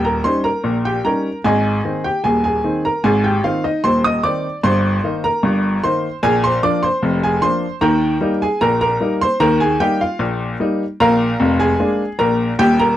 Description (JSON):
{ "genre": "ragtime piano", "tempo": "75 BPM", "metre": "2/4", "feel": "straight", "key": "Eb major", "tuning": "A4 = 440 Hz", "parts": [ { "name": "clear upright piano", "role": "solo", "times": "0.0-13.0 s", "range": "Eb1 to Eb6", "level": "-15 LUFS", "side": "equal", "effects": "none" } ], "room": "light reverb", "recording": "dry, close 1970s-style studio recording", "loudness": "-15 LUFS", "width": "side -12 dB against mid", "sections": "0.0-13.0 A section", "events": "none", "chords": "0.0 Eb7; 1.4 Ab; 4.6 Eb/G; 6.2 Bb7; 7.8 Eb; 11.0 Bb7" }